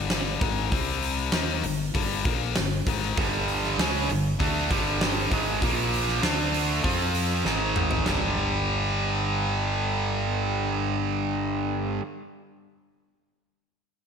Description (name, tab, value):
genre	hard rock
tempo	98 BPM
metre	4/4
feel	straight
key	unclear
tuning	A4 = 445 Hz
part	overdriven electric guitar	riff	0.0-12.0 s	G2 to F4	-28 LUFS	left 8 dB	slapback echo
part	growling fingered electric bass	bass	0.0-12.0 s	G1 to F2	-31 LUFS	equal	overdrive
part	huge arena drum kit	drums	0.1-8.2 s	hi-hat, kick drum, snare drum, toms	-28 LUFS	equal	none
part	tight distorted guitar	riff	3.2-12.0 s	G2 to F4	-28 LUFS	right 10 dB	distortion, slapback echo
room	moderate lush hall reverb, RT60 1.9 s, studio ambience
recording	big arena sound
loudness	-23 LUFS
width	side -6 dB against mid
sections	0.0-8.1 A section; 8.1-10.5 B section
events	drum fill 7.5-8.1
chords	0.0 G5; 0.7 C5; 1.3 Gm; 5.6 Bb5; 6.2 D5; 6.8 F5; 7.5 Ab5; 8.1 G5